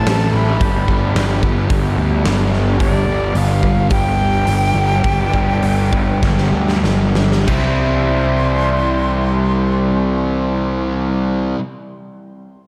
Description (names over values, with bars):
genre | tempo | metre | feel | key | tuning
rock, shoegaze and dream pop | 92-110 BPM | 4/4 | straight | C major | A4 = 439 Hz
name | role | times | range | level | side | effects
breathy bright jazz flute | melody | 0.0-10.8 s | D5 to C6 | -26 LUFS | equal | delay
fingerpicked plugged-in twelve-string acoustic guitar | arpeggios | 0.0-11.6 s | G3 to B4 | -32 LUFS | equal | none
overdriven electric guitar | riff | 0.0-11.6 s | G2 to A4 | -25 LUFS | equal | reverse reverb
thick fuzz guitar | riff | 0.0-11.6 s | G2 to C4 | -24 LUFS | equal | distortion, analog chorus
fuzz picked electric bass | bass | 0.0-11.5 s | G1 to D2 | -20 LUFS | equal | overdrive
big rock drum kit | drums | 0.1-7.6 s | crash cymbal, hi-hat, kick drum, snare drum | -23 LUFS | equal | none
room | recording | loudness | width
moderate plate reverb, RT60 2.1 s | dreamy mix soaked in reverb | -16 LUFS | mono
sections
0.0-7.5 A section; 7.5-10.1 B section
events
slowing down 2.8-7.5; drum fill 6.2-7.5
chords
0.0 Amadd9; 0.6 G; 7.5 C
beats
0.07 | 0.61 1.16 1.71 2.25 | 2.80 3.35 3.90 4.46 | 5.04 5.62 6.22 6.84 | 7.47 8.12 8.77 9.42